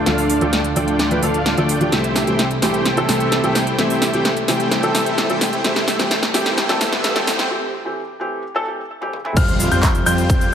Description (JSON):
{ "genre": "EDM, festival progressive house", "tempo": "129 BPM", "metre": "4/4", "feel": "straight", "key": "C major", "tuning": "A4 = 440 Hz", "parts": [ { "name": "lush unison pad", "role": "sustained chords", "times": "0.0-10.5 s", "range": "C3 to A4", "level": "-26 LUFS", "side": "equal", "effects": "chorus, sidechain pumping" }, { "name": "dense compressed supersaw", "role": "riff", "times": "0.0-10.5 s", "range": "G3 to G5", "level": "-21 LUFS", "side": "equal", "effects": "sidechain pumping, low-pass filter, digital delay" }, { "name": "fat analog bass", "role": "bass", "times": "0.0-10.5 s", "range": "C2 to F2", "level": "-26 LUFS", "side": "equal", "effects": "sidechain pumping" }, { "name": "felt-muted upright piano", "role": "accompaniment", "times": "0.1-9.4 s", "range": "E3 to B4", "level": "-22 LUFS", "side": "equal", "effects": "sidechain pumping, digital delay" }, { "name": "big-room dance drum kit", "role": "drums", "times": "0.1-10.5 s", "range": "cabasa, crash cymbal, handclaps, hi-hat, snare drum, toms", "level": "-21 LUFS", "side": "equal", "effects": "none" }, { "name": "riser and impact", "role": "sound effects", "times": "5.1-10.5 s", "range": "none", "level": "-29 LUFS", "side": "equal", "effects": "none" }, { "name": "warm concert grand piano", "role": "arpeggios", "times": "9.4-10.5 s", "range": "F6 to G6", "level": "-22 LUFS", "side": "left 3 dB", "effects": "sidechain pumping, digital delay" }, { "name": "electronic kick drum", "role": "drums", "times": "9.4-10.4 s", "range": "none", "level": "-17 LUFS", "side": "equal", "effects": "none" } ], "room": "moderate lush hall reverb, RT60 1.7 s", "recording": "high-pass filter", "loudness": "-16 LUFS", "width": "side -8 dB against mid", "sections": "0.0-9.4 A section; 9.4-10.5 B section", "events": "build-up 0.0-9.4; drum fill 0.0-7.5, 9.0-9.4; break 7.5-9.4; drop 9.4-10.5; impact 9.4-10.5", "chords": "0.0 Dm; 1.9 C6; 9.4 Fsus2" }